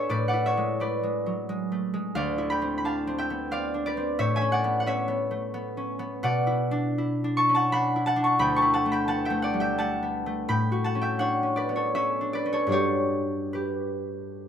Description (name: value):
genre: classical, solo harp piece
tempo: 72-92 BPM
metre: 3/4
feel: rubato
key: A major, D major from 6.2 s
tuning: A4 = 440 Hz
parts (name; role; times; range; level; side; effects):
- concert harp; solo; 0.0-14.5 s; D2 to C#6; -24 LUFS; equal; none
room: light reverb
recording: none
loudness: -24 LUFS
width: side -8 dB against mid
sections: 0.0-14.5 A section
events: none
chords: 0.1 E9/A; 2.2 Dm9; 4.2 A69; 6.2 Bm11; 8.4 Dadd9; 10.5 A13; 12.7 Gmaj7